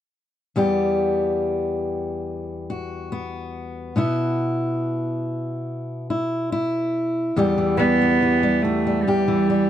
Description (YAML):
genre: acoustic folk duo or small band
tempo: 71 BPM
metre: 4/4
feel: straight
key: E minor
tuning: A4 = 441 Hz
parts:
  - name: fingerpicked steel-string acoustic guitar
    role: accompaniment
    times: 0.6-9.7 s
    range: E2 to G4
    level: -22 LUFS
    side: left 1 dB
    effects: none
  - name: warm cello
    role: melody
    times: 7.8-9.7 s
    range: G3 to B3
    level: -18 LUFS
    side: right 3 dB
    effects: none
room: moderate booth ambience, RT60 0.2 s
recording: dark, warm production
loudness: -20 LUFS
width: side -11 dB against mid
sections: 0.6-7.4 A section; 7.4-9.7 B section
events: none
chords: 0.6 Em; 4.0 Bsus4; 7.4 Em